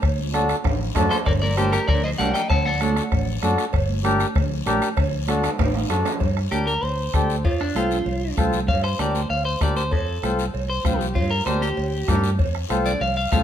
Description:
latin, cumbia; 194 BPM; 4/4; straight; G minor from 6.2 s; A4 = 436 Hz
fingered electric bass; bass; 0.0-13.4 s; G1 to G2; -25 LUFS; equal
bombo; percussion; 0.0-13.4 s; -24 LUFS; left 1 dB
cowbell and timbales; percussion; 0.0-13.4 s; -32 LUFS; right 5 dB
guiro; percussion; 0.0-13.4 s; -36 LUFS; left 7 dB
congas; percussion; 0.2-13.4 s; -30 LUFS; right 4 dB
mellow accordion; accompaniment; 0.3-13.4 s; C4 to C5; -25 LUFS; left 1 dB
electric guitar at the edge of break-up; melody; 1.1-3.6, 6.5-13.4 s; D4 to A5; -25 LUFS; left 1 dB; spring reverb
light reverb; minimal, uncompressed stereo recording; -19 LUFS; side -10 dB against mid
0.0-6.2 A section; 6.2-13.4 B section
drum fill 0.7-1.3, 5.4-6.2; clean electric guitar solo 6.2-13.4
0.0 D; 1.3 Gm; 2.5 D; 3.7 Gm; 5.0 D; 6.2 Gm; 7.4 F; 8.7 Gm; 9.9 F; 11.2 Gm; 12.4 F
| 0.03 0.34 0.65 0.96 | 1.27 1.58 1.89 2.19 | 2.50 2.81 3.12 3.43 | 3.74 4.05 4.36 4.67 | 4.97 5.28 5.59 5.90 | 6.21 6.52 6.83 7.14 | 7.45 7.76 8.07 8.38 | 8.69 8.99 9.30 9.61 | 9.92 10.23 10.54 10.85 | 11.16 11.47 11.78 12.09 | 12.40 12.71 13.02 13.32

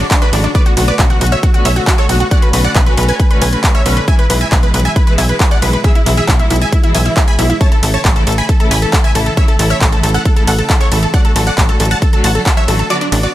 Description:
uplifting trance; 136 BPM; 4/4; straight; A major; A4 = 438 Hz
supersaw stab; melody; 0.0-13.3 s; D4 to B5; -18 LUFS; right 1 dB; sidechain pumping, tape echo
wide unison pluck; second line; 0.0-13.3 s; D5 to B6; -22 LUFS; right 1 dB; sidechain pumping, tape echo
rich studio string section; sustained chords; 0.0-13.3 s; B2 to F#4; -21 LUFS; left 1 dB; sidechain pumping
tight sequencer bass; bass; 0.0-13.3 s; A1 to B1; -15 LUFS; equal; sidechain pumping
punchy analog drum machine; drums; 0.0-13.3 s; handclaps, hi-hat, ride cymbal; -19 LUFS; equal
electronic kick drum; drums; 0.1-12.5 s; -12 LUFS; equal; overdrive
little or no reverb; -10 LUFS; side -14 dB against mid
0.0-13.3 A section
kick drops out 12.9-13.3
0.0 D; 0.5 Bm7; 4.1 E/B; 7.6 A; 11.1 D/A
0.11 | 0.55 0.99 1.43 1.87 | 2.31 2.75 3.20 3.64 | 4.08 4.52 4.96 5.40 | 5.84 6.28 6.73 7.17 | 7.61 8.05 8.49 8.93 | 9.37 9.81 10.26 10.70 | 11.14 11.58 12.02 12.46 | 12.90

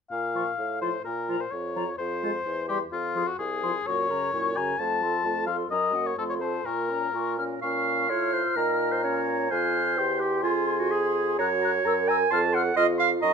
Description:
quick classical-period movement for wind quintet; 128 BPM; 2/4; rubato; Bb minor; A4 = 439 Hz
warm oboe; second line; 0.1-13.3 s; F4 to Db6; -30 LUFS; left 5 dB
dark bassoon; bass; 0.1-13.3 s; C2 to Bb2; -31 LUFS; right 2 dB
clear clarinet; accompaniment; 0.3-13.3 s; Db4 to A5; -28 LUFS; right 7 dB
mellow French horn; accompaniment; 0.3-13.3 s; Bb2 to Bb4; -33 LUFS; left 2 dB
hollow concert flute; melody; 0.4-13.3 s; Gb5 to Gb6; -32 LUFS; left 7 dB
light reverb; minimal, uncompressed stereo recording; -24 LUFS; side -6 dB against mid
0.1-7.6 A section; 7.6-13.3 B section
0.1 Bbm; 0.6 F/A; 1.1 Bbm; 2.0 Fm; 2.5 C/E; 2.9 Fm; 3.9 Gb; 4.3 Gb7; 4.8 F; 5.7 Gb; 6.2 F; 6.7 Bbm; 8.1 F/A; 8.6 Bbm; 9.5 Fm; 10.0 C/E; 10.4 Fm; 11.4 Gb; 12.3 F
| 0.12 0.59 | 1.05 1.52 | 1.99 2.46 | 2.92 3.39 | 3.86 4.33 | 4.79 5.24 | 5.70 6.17 | 6.65 7.14 | 7.63 8.10 | 8.57 9.04 | 9.51 9.98 | 10.44 10.91 | 11.39 11.86 | 12.31 12.77 | 13.22

